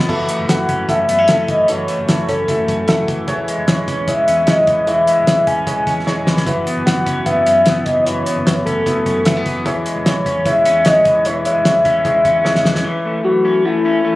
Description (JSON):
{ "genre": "jangly indie pop", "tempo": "151 BPM", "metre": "4/4", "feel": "straight", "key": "unclear", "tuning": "A4 = 445 Hz", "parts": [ { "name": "warm upright piano", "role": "accompaniment", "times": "0.0-12.9 s", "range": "C#4 to E5", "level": "-23 LUFS", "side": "right 1 dB", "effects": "none" }, { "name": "electric guitar at the edge of break-up", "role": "arpeggios", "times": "0.0-14.2 s", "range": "E3 to E#4", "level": "-21 LUFS", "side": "left 1 dB", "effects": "vibrato effect, digital delay" }, { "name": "vintage muted fingered electric bass", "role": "bass", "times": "0.0-12.8 s", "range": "E1 to F#2", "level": "-27 LUFS", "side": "equal", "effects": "none" }, { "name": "cloth-damped thuddy drum kit", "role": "drums", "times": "0.1-12.8 s", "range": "crash cymbal, hi-hat, kick drum, snare drum", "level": "-18 LUFS", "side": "equal", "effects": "none" }, { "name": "soft octave-layered synth lead", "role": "melody", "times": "0.5-14.2 s", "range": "E4 to G#5", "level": "-15 LUFS", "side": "left 1 dB", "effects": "chorus" } ], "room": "light reverb, small room reverb", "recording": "recorded on a phone in the room, club reverb", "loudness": "-13 LUFS", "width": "side -18 dB against mid", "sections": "0.1-12.8 A section; 12.8-14.2 A section", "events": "drum fill 6.1-6.5, 12.4-12.8", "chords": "0.1 F#m7; 3.3 C#m/E; 6.5 F#7sus4; 9.7 C#m/E; 12.8 F#m7", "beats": "| 0.09 0.49 0.89 1.28 | 1.68 2.08 2.48 2.88 | 3.28 3.68 4.08 4.47 | 4.87 5.27 5.67 6.07 | 6.47 6.87 7.26 7.66 | 8.06 8.46 8.86 9.26 | 9.66 10.05 10.45 10.85 | 11.25 11.65 12.05 12.44 | 12.84 13.24 13.64 14.04" }